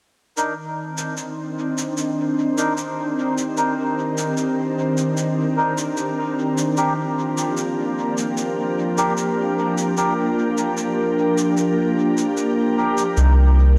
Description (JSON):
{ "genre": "ambient dub", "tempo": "75 BPM", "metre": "4/4", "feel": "straight", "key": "C minor", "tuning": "A4 = 442 Hz", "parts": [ { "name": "soft additive organ-like pad", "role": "sustained chords", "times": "0.6-13.8 s", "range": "Eb3 to Bb4", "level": "-23 LUFS", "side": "equal", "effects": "ensemble chorus, built-in reverb" }, { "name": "melodica", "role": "stabs", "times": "0.4-13.3 s", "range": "D4 to Bb4", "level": "-28 LUFS", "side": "equal", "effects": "low-pass filter, dub echo" }, { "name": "cabasa", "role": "drums", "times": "0.4-13.3 s", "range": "none", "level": "-35 LUFS", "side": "equal", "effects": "overdrive, dub echo" }, { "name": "warm sub bass", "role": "bass", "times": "13.2-13.8 s", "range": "C2", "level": "-14 LUFS", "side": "equal", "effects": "none" } ], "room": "wet huge ambient reverb, RT60 4.8 s", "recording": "dreamy mix soaked in reverb", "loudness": "-21 LUFS", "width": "mono", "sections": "0.4-13.8 A section", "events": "none", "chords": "0.4 Cm9; 6.8 Bb6; 13.2 Cm9", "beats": "| 0.37 1.17 1.97 2.77 | 3.57 4.37 5.17 5.97 | 6.77 7.57 8.37 9.17 | 9.97 10.77 11.57 12.37 | 13.17" }